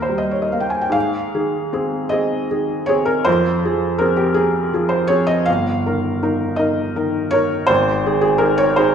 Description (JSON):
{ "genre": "classical, romantic nocturne for solo piano", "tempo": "45-56 BPM (dotted quarters)", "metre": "12/8", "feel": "rubato", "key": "Ab major", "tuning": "A4 = 439 Hz", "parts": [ { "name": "felt-muted upright piano", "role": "solo", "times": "0.0-8.9 s", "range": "G1 to Ab5", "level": "-16 LUFS", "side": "equal", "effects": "none" } ], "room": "wet recital hall reverb, RT60 1.4 s", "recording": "heard from further back in the room", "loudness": "-16 LUFS", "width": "side -7 dB against mid", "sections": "0.9-8.9 A section", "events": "none", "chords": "0.0 Eb; 0.9 Ab; 3.3 Fm; 5.5 Eb/G; 7.7 Ab5", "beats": "| 0.95 2.11 3.27 4.37 | 5.47 6.59 7.70 8.78" }